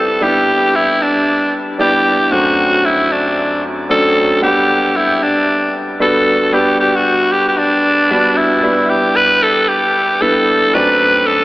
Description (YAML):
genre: R&B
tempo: 114 BPM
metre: 4/4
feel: swing 62% on 16ths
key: G major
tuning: A4 = 440 Hz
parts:
  - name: growling tenor saxophone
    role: melody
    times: 0.0-11.4 s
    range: D4 to B4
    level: -12 LUFS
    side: equal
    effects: none
  - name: warm concert grand piano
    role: accompaniment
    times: 0.0-11.4 s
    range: F#2 to F#5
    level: -17 LUFS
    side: equal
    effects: none
room: wet cathedral reverb, RT60 5.1 s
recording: dreamy mix soaked in reverb, AM radio sound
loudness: -11 LUFS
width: side -18 dB against mid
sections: 0.2-11.4 A section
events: none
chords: 0.2 Em7; 2.3 D7/F#; 4.4 Gmaj7; 8.6 Em7; 10.7 D7/F#